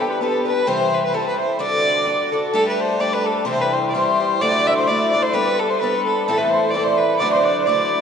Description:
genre	celtic folk, Celtic polka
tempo	129 BPM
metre	2/4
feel	swing 55% on 8ths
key	D mixolydian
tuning	A4 = 440 Hz
part	warm fiddle	melody	0.0-8.0 s	G4 to E5	-21 LUFS	right 1 dB	none
part	concert harp	second line	0.0-3.5, 6.3-8.0 s	G4 to E5	-24 LUFS	right 7 dB	none
part	mellow hollow wooden whistle	second line	0.0-8.0 s	G5 to E6	-24 LUFS	left 3 dB	none
part	picked twelve-string acoustic guitar	accompaniment	0.0-8.0 s	A2 to C5	-21 LUFS	left 2 dB	none
room	wet church reverb, RT60 3.4 s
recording	recorded in a church or concert hall, nothing above 10.7 kHz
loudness	-16 LUFS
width	side -7 dB against mid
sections	0.0-2.5 A section; 2.5-8.0 B section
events	none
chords	0.0 G/B; 0.7 C; 1.6 D; 2.5 Gsus2; 3.5 C; 4.4 Dadd9; 5.3 Gadd9; 6.3 Am; 7.2 Dadd9

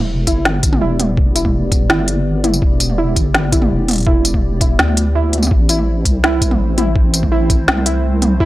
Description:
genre	half-time drum and bass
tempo	166 BPM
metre	4/4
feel	half-time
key	E minor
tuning	A4 = 440 Hz
part	dark analog pad	sustained chords	0.0-8.5 s	A3 to D5	-25 LUFS	equal	chorus, phaser, sidechain pumping
part	deep soft wobble bass	bass	0.0-8.5 s	E1 to D2	-17 LUFS	equal	chorus
part	organic electronic drum kit	drums	0.0-8.3 s	hi-hat, snare drum, tambourine, toms	-17 LUFS	equal	none
part	impact	sound effects	0.0-1.2 s	none	-32 LUFS	equal	none
part	warbly dusty pluck	arpeggios	0.3-8.5 s	E4	-21 LUFS	right 2 dB	chorus, analog delay
part	electronic kick drum	drums	0.3-8.5 s	none	-16 LUFS	equal	none
room	little or no reverb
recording	dry, gritty hardware recording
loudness	-12 LUFS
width	side -16 dB against mid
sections	0.0-8.5 A section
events	impact 0.0-1.2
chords	0.0 Em7; 5.5 Am

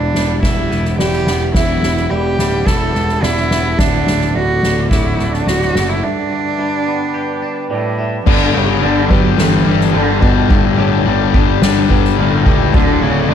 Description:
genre	post-rock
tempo	107 BPM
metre	4/4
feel	straight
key	unclear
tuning	A4 = 441 Hz
part	rich cello	melody	0.0-13.3 s	A2 to A4	-18 LUFS	right 1 dB	analog delay
part	warbly tape-like pad	sustained chords	0.0-13.3 s	D4 to D6	-27 LUFS	equal	chorus, built-in reverb
part	felt-muted upright piano	arpeggios	0.0-13.3 s	A4 to F#5	-27 LUFS	right 7 dB	analog delay
part	twangy electric guitar	arpeggios	0.0-13.3 s	D2 to G4	-25 LUFS	left 2 dB	analog delay
part	fuzz picked electric bass	bass	0.0-13.3 s	D1 to C#2	-17 LUFS	equal	overdrive
part	soft-mallet drum kit	drums	0.1-13.3 s	crash cymbal, kick drum, snare drum	-17 LUFS	equal	none
part	cranked stack guitar	riff	8.3-13.3 s	D2 to G3	-16 LUFS	left 14 dB	overdrive
room	small room ambience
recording	dark, warm production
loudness	-12 LUFS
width	side -8 dB against mid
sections	0.0-8.3 A section; 8.3-13.3 B section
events	break 6.0-8.3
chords	0.0 Emadd9; 3.8 D; 6.0 G; 8.3 Gsus2; 12.7 D

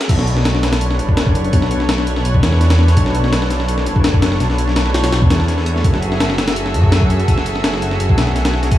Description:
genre	drum and bass, jungle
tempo	167 BPM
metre	4/4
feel	straight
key	B minor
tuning	A4 = 441 Hz
part	lush unison pad	sustained chords	0.0-8.8 s	D4 to F#5	-21 LUFS	right 1 dB	chorus
part	breakbeat sampler-style drum kit	drums	0.0-8.8 s	crash cymbal, hi-hat, kick drum, snare drum	-16 LUFS	left 1 dB	high-pass filter on hats, studio ambience, high-pass filter on snare, high-pass filter on cymbals, high-pass filter on kick
part	detuned saw bass	bass	0.1-8.8 s	F#1 to F#2	-16 LUFS	equal	none
room	light reverb, digital ambience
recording	vinyl crackle, small room reverb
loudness	-13 LUFS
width	side -13 dB against mid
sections	0.1-8.8 A section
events	drop 0.1-8.8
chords	0.1 Bm9; 5.8 F#m9

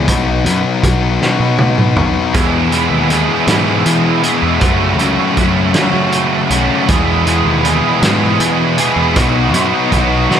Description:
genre	indie rock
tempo	53 BPM (dotted quarters)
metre	6/8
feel	straight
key	E major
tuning	A4 = 440 Hz
part	sludgy distorted guitar	riff	0.0-10.4 s	E2 to G#4	-15 LUFS	left 4 dB	overdrive, slapback echo
part	growling picked electric bass	bass	0.0-10.3 s	B1 to F#3	-17 LUFS	right 1 dB	overdrive
part	loose indie drum kit	drums	0.1-10.4 s	hi-hat, kick drum, snare drum, toms	-17 LUFS	right 1 dB	none
part	scooped high-gain guitar	riff	2.3-10.4 s	E2 to G#4	-16 LUFS	right 10 dB	distortion, analog chorus, slapback echo
room	moderate concert hall reverb, RT60 2.0 s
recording	big arena sound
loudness	-11 LUFS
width	side -8 dB against mid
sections	0.0-10.4 A section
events	drum fill 1.2-2.3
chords	0.1 B5; 2.3 Emaj7; 4.6 F#m; 6.9 Emaj7; 9.2 B5

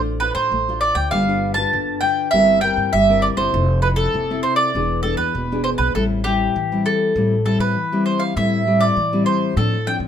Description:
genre	samba and choro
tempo	99 BPM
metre	4/4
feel	straight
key	A minor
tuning	A4 = 440 Hz
part	nylon-string guitar	accompaniment	0.0-10.1 s	A2 to C5	-21 LUFS	left 3 dB	none
part	upright bass	bass	0.0-10.1 s	E1 to A3	-24 LUFS	equal	none
part	mandolin	melody	0.2-10.0 s	G4 to A5	-19 LUFS	right 2 dB	none
room	light reverb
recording	minimal, uncompressed stereo recording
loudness	-16 LUFS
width	side -9 dB against mid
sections	0.0-8.4 A section; 8.4-10.1 A section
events	break 7.8-8.4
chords	0.0 Dm7/A; 1.1 G7; 2.3 C7/G; 3.5 Fmaj7; 4.7 E7; 6.0 Am7; 9.6 Dm7/A

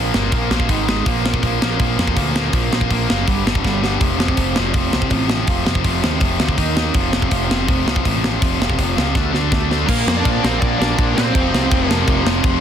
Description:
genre	punk rock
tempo	163 BPM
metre	4/4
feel	straight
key	Bb major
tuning	A4 = 440 Hz
part	distorted electric guitar	riff	0.0-12.6 s	F2 to Eb4	-23 LUFS	right 12 dB	distortion
part	tight distorted guitar	riff	0.0-12.6 s	F2 to Eb4	-22 LUFS	left 15 dB	distortion
part	growling picked electric bass	bass	0.0-12.6 s	F1 to Bb2	-22 LUFS	equal	overdrive
part	tight metal drum kit	drums	0.1-12.5 s	crash cymbal, hi-hat, kick drum, snare drum	-19 LUFS	equal	none
part	smooth overdriven lead guitar	melody	9.9-12.2 s	Bb3 to D5	-22 LUFS	equal	none
part	tight distorted guitar	riff	9.9-12.6 s	F2 to Bb3	-25 LUFS	equal	distortion
room	little or no reverb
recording	dense, heavily limited modern master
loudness	-15 LUFS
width	side -9 dB against mid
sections	0.0-9.9 A section; 9.9-12.6 B section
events	drum fill 3.6-4.0, 9.2-9.9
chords	0.0 Bb5; 0.7 Ab5; 1.1 Bb; 3.3 G5; 4.0 F; 6.6 Eb5; 7.0 F; 9.2 D5; 9.9 Bb; 11.3 F5

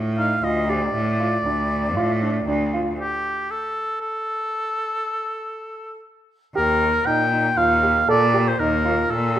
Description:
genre	contemporary instrumental, chamber music in an uneven meter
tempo	118 BPM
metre	7/4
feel	straight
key	Eb lydian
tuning	A4 = 439 Hz
part	bright cello	bass	0.0-9.4 s	D2 to Bb2	-23 LUFS	equal	none
part	warm oboe	melody	0.2-9.4 s	G4 to G5	-22 LUFS	equal	none
part	dark concert grand piano	arpeggios	0.2-9.4 s	D4 to A4	-25 LUFS	right 2 dB	none
room	moderate scoring stage reverb, RT60 1.8 s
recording	minimal, uncompressed stereo recording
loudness	-19 LUFS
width	side -11 dB against mid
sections	0.0-6.6 A section; 6.6-9.4 B section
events	stop 3.0-6.6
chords	0.0 Dm; 3.0 N.C.; 6.6 Ebadd9

